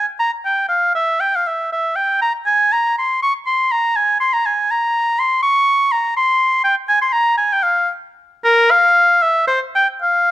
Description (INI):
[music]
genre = classical, baroque-style fantasia for unaccompanied oboe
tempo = 72-84 BPM (dotted quarters)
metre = 6/8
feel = rubato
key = F minor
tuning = A4 = 440 Hz
[part]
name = clear oboe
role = solo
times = 0.0-10.3 s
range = Bb4 to Db6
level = -14 LUFS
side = equal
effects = none
[sound]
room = moderate large studio reverb, RT60 1.4 s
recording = dark, warm production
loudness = -14 LUFS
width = side -14 dB against mid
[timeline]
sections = 0.0-10.3 A section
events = none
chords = none